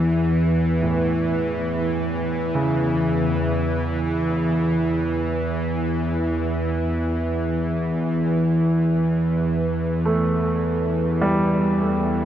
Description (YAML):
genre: dark ambient drone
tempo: 52 BPM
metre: 4/4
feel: straight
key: unclear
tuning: A4 = 440 Hz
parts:
  - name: bowed-like drone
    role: drone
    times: 0.0-12.2 s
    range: E2 to E3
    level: -20 LUFS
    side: equal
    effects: built-in reverb
  - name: quartz singing bowl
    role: texture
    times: 0.0-12.2 s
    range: none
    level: barely audible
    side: none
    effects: none
  - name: clear baby grand piano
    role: arpeggios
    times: 0.8-12.2 s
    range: A2 to A3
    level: -26 LUFS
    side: right 1 dB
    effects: diffuse ambient delay
room: wet huge ambient reverb, RT60 8.4 s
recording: none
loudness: -19 LUFS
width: side -10 dB against mid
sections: 0.0-12.2 A section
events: filter sweep on synth drone 0.0-12.2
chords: 0.0 A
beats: 0.82 1.97 3.13 | 4.28 5.43 6.59 7.74 | 8.90 10.05 11.21